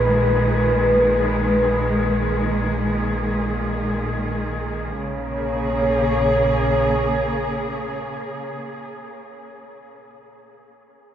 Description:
dark ambient drone; free time; A4 = 440 Hz
mellow horn-like synth lead; melody; 0.0-8.5 s; Cb5 to Db5; -23 LUFS; equal; analog chorus, diffuse ambient delay
dark studio cello section; sustained chords; 0.0-8.9 s; Bb2 to Ab4; -23 LUFS; right 1 dB
deep rumbling drone; drone; 0.0-8.5 s; Bb1 to Bb2; -25 LUFS; equal; built-in reverb
wet huge ambient reverb, RT60 8.4 s; -18 LUFS; side -10 dB against mid
0.0-5.0 A section; 5.0-9.2 B section
0.0 Abm/Bb; 5.0 Bbm7

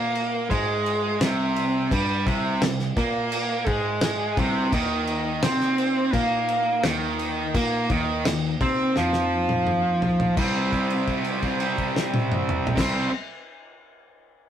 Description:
classic rock; 85 BPM; 4/4; straight; C minor; A4 = 441 Hz
distorted electric guitar; riff; 0.0-13.1 s; C3 to C4; -24 LUFS; right 3 dB; overdrive
tight distorted guitar; riff; 0.0-13.1 s; C3 to C4; -31 LUFS; left 8 dB; distortion
picked electric bass; bass; 0.0-13.1 s; C2 to C3; -29 LUFS; left 1 dB
damped 70s drum kit; drums; 0.2-12.9 s; crash cymbal, kick drum, snare drum, toms; -28 LUFS; equal
bright tonewheel organ; sustained chords; 4.4-13.1 s; A3 to Eb5; -38 LUFS; left 3 dB
moderate studio reverb, RT60 0.5 s; rough rehearsal-room recording; -21 LUFS; side -9 dB against mid
0.0-10.4 A section; 10.4-13.2 B section
drum fill 9.0-10.4; held note 10.4-12.8
0.0 C5; 4.7 Eb5; 10.4 Cm

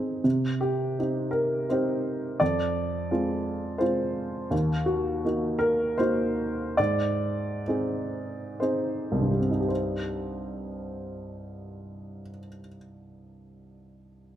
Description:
neoclassical minimalist piano; 53-86 BPM; 3/4; rubato; C minor; A4 = 440 Hz
warm upright piano; solo; 0.0-14.4 s; C2 to D5; -26 LUFS; equal
light reverb; close, detailed microphones; -25 LUFS; side -11 dB against mid
0.2-9.7 A section; 9.7-14.4 B section
slowing down 3.5-9.7
0.2 Cm; 2.4 Fm; 4.5 Ebm; 6.8 Ab; 9.7 Cm

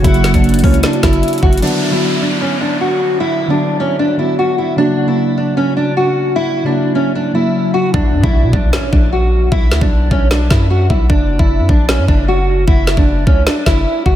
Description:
hip hop, trap; 152 BPM; 4/4; half-time; B harmonic minor; A4 = 440 Hz
fingerpicked steel-string acoustic guitar; melody; 0.0-14.2 s; C#4 to F#4; -16 LUFS; equal; analog chorus, low-pass filter, diffuse ambient delay
muted felt-like synth keys; accompaniment; 0.0-8.0 s; C#3 to F#4; -17 LUFS; equal; chorus, phaser, low-pass filter
long sustained 808-style bass; bass; 0.0-1.6, 7.9-14.2 s; F#1 to B2; -15 LUFS; equal
trap drum kit; drums; 0.0-1.7, 7.9-14.2 s; hi-hat, kick drum, snare drum; -14 LUFS; equal
downlifter and impact; sound effects; 1.6-4.8, 7.9-9.5 s; -24 LUFS; equal
moderate church reverb, RT60 3.2 s; dreamy mix soaked in reverb; -11 LUFS; side -11 dB against mid
0.0-1.6 A section; 1.6-7.9 B section; 7.9-14.2 C section
hi-hats muted 7.9-14.2; impact 7.9-9.5
0.0 F#; 1.6 Bm; 4.8 F#; 7.9 Bm; 11.1 N.C.

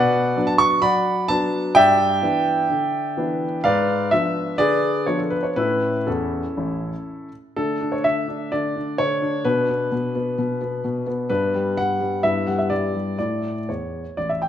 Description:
classical-period piano sonatina; 127 BPM; 4/4; rubato; D major; A4 = 440 Hz
warm grand piano; solo; 0.0-14.5 s; A1 to C#6; -19 LUFS; equal
moderate recital hall reverb, RT60 1.5 s; close, detailed microphones; -19 LUFS; side -10 dB against mid
0.0-7.6 A section; 7.6-14.5 B section
0.0 Bm; 1.8 Em7/G; 3.6 G#dim7; 5.6 A; 7.6 D5; 9.5 Bm; 11.3 G; 12.2 Em/G; 13.2 A

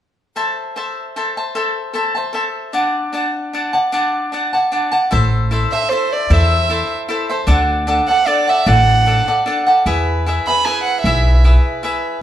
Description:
mexican folk, mariachi; 152 BPM; 3/4; straight; A dorian; A4 = 443 Hz
cavaquinho; accompaniment; 0.4-12.2 s; D4 to A5; -17 LUFS; equal
upright bass; bass; 5.1-11.6 s; A1 to E2; -14 LUFS; equal
warm violin; melody; 5.7-11.4 s; C5 to B5; -17 LUFS; right 3 dB
moderate large studio reverb, RT60 0.9 s; band playing live in one room; -14 LUFS; side -11 dB against mid
0.4-5.1 A section; 5.1-12.2 B section
0.4 Am; 2.7 D; 5.1 Am; 7.5 D; 9.9 E

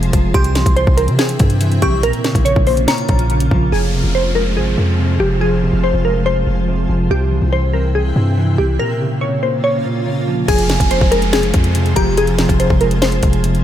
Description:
hip hop, trap; 142 BPM; 4/4; half-time; F harmonic minor; A4 = 442 Hz
glassy wavetable pluck; melody; 0.0-13.6 s; G4 to Db5; -19 LUFS; left 1 dB; chorus, analog delay
mellow electric guitar; accompaniment; 0.0-13.6 s; F2 to C4; -20 LUFS; right 2 dB; analog delay
granular cloud pad; sustained chords; 0.0-13.6 s; C3 to G5; -24 LUFS; equal; built-in reverb
long sustained 808-style bass; bass; 0.0-13.6 s; E1 to C3; -17 LUFS; equal
trap drum kit; drums; 0.0-3.6, 10.5-13.6 s; crash cymbal, hi-hat, kick drum, snare drum; -16 LUFS; equal
delicate synth tine bell; second line; 0.3-3.7, 10.5-12.2 s; Ab5 to Db6; -26 LUFS; equal; chorus, phaser, analog delay
downlifter; sound effects; 3.7-7.1, 10.5-13.6 s; -28 LUFS; equal
digital ambience; echo-heavy mix; -13 LUFS; side -11 dB against mid
0.0-3.7 A section; 3.7-10.5 B section; 10.5-13.6 A section
break 8.8-10.5
0.3 C; 2.0 Bbm; 3.7 Fm; 7.1 C; 8.8 Bbm; 10.5 Fm

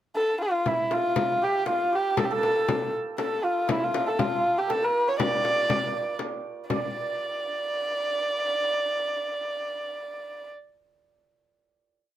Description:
Persian modal ensemble; 119 BPM; 3/4; straight; D avaz esfahan; A4 = 441 Hz
dark kamancheh; melody; 0.2-10.5 s; E4 to D5; -25 LUFS; equal
santur; second line; 0.7-11.1 s; E4 to D5; -33 LUFS; right 6 dB
frame drum; percussion; 0.7-6.9 s; -30 LUFS; left 4 dB
light reverb; -24 LUFS; side -12 dB against mid
0.0-0.7 pickup bar; 0.7-6.7 A section; 6.7-9.7 final note

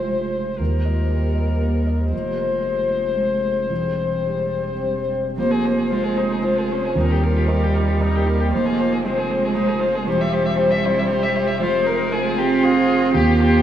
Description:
neoclassical piano and strings; 116 BPM; 3/4; rubato; F minor; A4 = 445 Hz
muted violin; melody; 0.0-13.6 s; F4 to E5; -22 LUFS; left 4 dB; slapback echo
muted cello; second line; 0.0-13.6 s; G3 to C4; -23 LUFS; right 3 dB
felt-muted upright piano; accompaniment; 0.0-13.6 s; Eb2 to Eb5; -25 LUFS; right 3 dB
deep dark ambient pad; sustained chords; 0.0-13.6 s; C4 to C5; -32 LUFS; left 1 dB; chorus, built-in reverb
saturated sub bass; bass; 0.0-13.6 s; E1 to Eb2; -24 LUFS; equal
muted viola; accompaniment; 5.9-13.6 s; C4 to Ab4; -28 LUFS; right 2 dB
wet cathedral reverb, RT60 5.7 s; in a vast, echoing space, small room ambience; -17 LUFS; side -10 dB against mid
0.0-5.4 A section; 5.4-13.6 B section
0.0 Fm; 0.6 Eb; 2.1 Fm; 3.7 C/E; 5.4 Fm; 6.9 Eb; 8.5 Fm; 10.1 C/E; 11.6 Fm

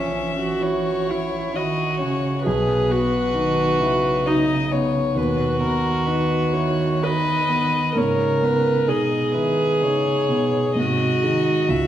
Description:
classical, slow romantic movement for piano quartet; 65 BPM; 3/4; uneven beats, rubato; B major; A4 = 440 Hz
warm violin; melody; 0.0-11.9 s; A#4 to E5; -25 LUFS; left 5 dB
dark cello; second line; 0.0-11.9 s; B2 to E3; -26 LUFS; right 3 dB
dark viola; accompaniment; 0.0-11.9 s; C#4 to B4; -22 LUFS; right 2 dB
warm concert grand piano; accompaniment; 0.0-11.9 s; A#1 to G#4; -25 LUFS; left 1 dB
wet recital hall reverb, RT60 1.5 s; recorded in a church or concert hall; -18 LUFS; side -11 dB against mid
0.0-11.9 A section
0.0 F#7/A#; 2.5 B; 5.2 B/D#; 8.0 G#m; 10.8 G#7

